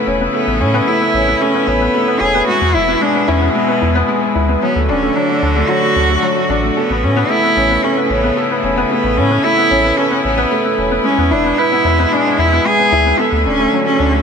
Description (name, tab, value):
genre	piano and strings electronica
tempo	112 BPM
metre	4/4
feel	straight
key	A major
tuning	A4 = 440 Hz
part	rich cello	melody	0.0-14.2 s	B3 to G#4	-16 LUFS	right 1 dB	digital delay
part	rich string quartet	sustained chords	0.0-14.2 s	B2 to B4	-21 LUFS	equal	none
part	felt-muted upright piano	riff	0.0-14.2 s	F#3 to B4	-16 LUFS	left 1 dB	digital delay
part	warm sub bass	bass	0.1-14.2 s	D1 to A2	-18 LUFS	equal	none
room	moderate huge ambient reverb, RT60 7.4 s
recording	none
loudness	-12 LUFS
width	side -6 dB against mid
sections	0.0-14.2 A section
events	none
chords	0.0 Aadd9; 2.5 E; 4.6 D; 6.8 Aadd9; 11.1 E; 13.2 D